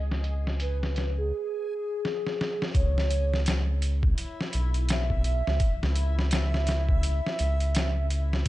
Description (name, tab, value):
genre	trip hop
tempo	84 BPM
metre	4/4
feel	swing 60% on 16ths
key	C# minor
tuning	A4 = 441 Hz
part	pure breathy sine lead	melody	0.0-8.3 s	G#4 to E5	-33 LUFS	right 1 dB	wide subtle chorus, cassette tape, tape echo
part	round analog bass	bass	0.0-8.4 s	B1 to C#2	-26 LUFS	equal	none
part	backwards swelling texture	texture	0.0-8.5 s	E4 to G#4	-43 LUFS	left 4 dB	built-in reverb
part	trip hop sampler-style drum kit	drums	0.1-8.5 s	hi-hat, kick drum, snare drum	-29 LUFS	equal	low-pass filter on hats, studio reverb, low-pass filter on snare, low-pass filter on kick
room	digital ambience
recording	dark, warm production, low-pass filter, nothing above 10.5 kHz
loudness	-24 LUFS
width	side -16 dB against mid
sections	0.0-2.7 A section; 2.7-8.5 B section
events	filter sweep 0.0-2.7; drum fill 2.0-2.7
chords	0.0 C#7(no3); 2.7 C#m7